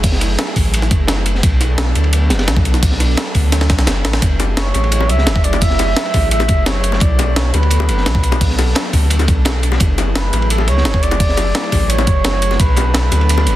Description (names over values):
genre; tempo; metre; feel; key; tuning
liquid drum and bass; 172 BPM; 4/4; straight; F# minor; A4 = 440 Hz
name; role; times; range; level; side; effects
airy breathy pad; sustained chords; 0.0-13.6 s; F#3 to A4; -24 LUFS; equal; chorus, sidechain pumping
warm sub bass; bass; 0.0-13.6 s; F#1 to D2; -16 LUFS; equal; none
breakbeat sampler-style drum kit; drums; 0.0-13.5 s; hi-hat, snare drum; -20 LUFS; equal; none
crunchy breakbeat drum kit; drums; 0.0-13.5 s; hi-hat, ride cymbal, snare drum; -24 LUFS; equal; high-pass filter on cymbals, high-pass filter on hats, high-pass filter on snare, high-pass filter on room
electronic kick drum; drums; 0.0-12.7 s; none; -16 LUFS; equal; none
bongos; percussion; 4.4-13.4 s; none; -25 LUFS; left 6 dB; none
trumpet with bucket mute; melody; 4.6-13.6 s; A4 to E5; -21 LUFS; right 2 dB; dub echo
room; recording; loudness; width
small room ambience; dense, heavily limited modern master; -12 LUFS; side -14 dB against mid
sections
0.0-13.6 A section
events
drum fill 3.5-4.2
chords
0.0 F#m9; 1.4 Bm7; 4.2 F#m9; 7.0 Bm7; 9.8 F#m9; 12.6 Bm7